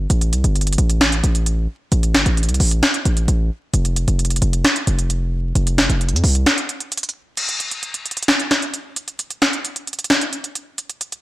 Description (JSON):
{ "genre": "hip hop, trap", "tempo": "132 BPM", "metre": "4/4", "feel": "half-time", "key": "unclear", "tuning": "A4 = 440 Hz", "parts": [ { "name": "hard-hitting 808-style bass", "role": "bass", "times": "0.0-6.5 s", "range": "F1 to F2", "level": "-17 LUFS", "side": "equal", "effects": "none" }, { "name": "trap drum kit", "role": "drums", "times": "0.1-11.2 s", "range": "crash cymbal, finger snaps, hi-hat, snare drum", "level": "-18 LUFS", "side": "equal", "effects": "soft clipping on snare" } ], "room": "light reverb", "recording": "blown-out, overdriven recording, vinyl crackle, overdrive", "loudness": "-16 LUFS", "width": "side -17 dB against mid", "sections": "0.0-7.4 A section; 7.4-11.2 B section", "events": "break 6.5-7.4, 7.4-11.2", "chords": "none", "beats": "| 0.10 0.56 1.01 1.46 | 1.92 2.37 2.83 3.28 | 3.74 4.19 4.65 5.10 | 5.55 6.01 6.46 6.92 | 7.37 7.83 8.28 8.74 | 9.19 9.65 10.10 10.55 | 11.01" }